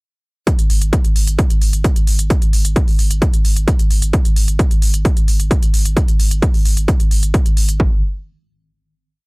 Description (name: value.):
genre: driving peak-time techno.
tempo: 131 BPM.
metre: 4/4.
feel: straight.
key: unclear.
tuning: A4 = 440 Hz.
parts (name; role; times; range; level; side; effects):
electronic hi-hat; drums; 0.5-7.8 s; none; -24 LUFS; right 1 dB; sidechain pumping on hats.
electronic kick drum; drums; 0.5-7.9 s; none; -14 LUFS; equal; none.
saturated sub bass; bass; 0.6-8.0 s; G#1; -18 LUFS; equal; overdrive, sidechain pumping, low-pass filter.
room: little or no reverb.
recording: dry, gritty hardware recording.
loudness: -13 LUFS.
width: side -36 dB against mid.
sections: 0.5-7.8 groove; 7.8-9.3 final note.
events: none.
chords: none.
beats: | 0.47 0.93 1.39 1.84 | 2.30 2.76 3.22 3.68 | 4.13 4.59 5.05 5.51 | 5.97 6.42 6.88 7.34 | 7.80.